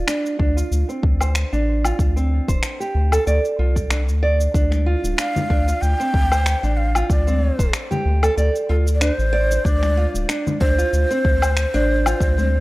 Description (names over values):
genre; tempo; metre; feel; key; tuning
organic downtempo; 94 BPM; 4/4; swing 55% on 16ths; D minor; A4 = 441 Hz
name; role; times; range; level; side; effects
nylon-string guitar; arpeggios; 0.0-12.6 s; C4 to D5; -24 LUFS; right 2 dB; low-pass filter, tape echo
round analog bass; bass; 0.0-12.6 s; D1 to D2; -19 LUFS; equal; none
electronic finger snaps, cabasa and woodblock; drums; 0.1-12.5 s; none; -25 LUFS; left 1 dB; none
electronic kick drum; drums; 0.4-12.3 s; none; -20 LUFS; equal; none
congas and bongos; percussion; 4.7-12.5 s; none; -28 LUFS; left 3 dB; none
breathy ney; melody; 5.2-12.6 s; A4 to G5; -23 LUFS; equal; tape echo
room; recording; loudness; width
light reverb, small room ambience; dry, gritty hardware recording; -17 LUFS; side -19 dB against mid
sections
0.0-12.6 A section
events
none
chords
0.0 Dm7